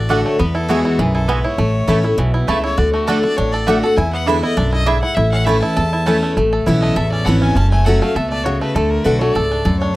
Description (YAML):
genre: bluegrass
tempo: 201 BPM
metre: 4/4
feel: straight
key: A major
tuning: A4 = 439 Hz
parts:
  - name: bluegrass banjo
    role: melody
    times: 0.0-10.0 s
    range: E3 to A4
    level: -23 LUFS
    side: right 3 dB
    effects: none
  - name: clear fiddle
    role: melody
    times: 0.0-10.0 s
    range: F#4 to A5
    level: -24 LUFS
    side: left 2 dB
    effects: none
  - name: picked steel-string acoustic guitar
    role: accompaniment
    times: 0.0-9.9 s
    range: E2 to F#4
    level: -18 LUFS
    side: left 1 dB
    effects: none
  - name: upright bass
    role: bass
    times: 0.0-9.9 s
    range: F#1 to E2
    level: -18 LUFS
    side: equal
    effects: none
  - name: mandolin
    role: stabs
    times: 0.1-6.2 s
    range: A3 to B5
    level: -20 LUFS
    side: right 5 dB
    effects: none
room: light reverb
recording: dry, close 1970s-style studio recording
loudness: -14 LUFS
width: side -18 dB against mid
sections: 0.0-6.4 A section; 6.4-10.0 A section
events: none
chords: 0.4 Eadd9; 1.6 A; 2.8 D; 4.0 E7; 5.2 A; 6.4 Aadd9; 7.6 F#m; 8.8 D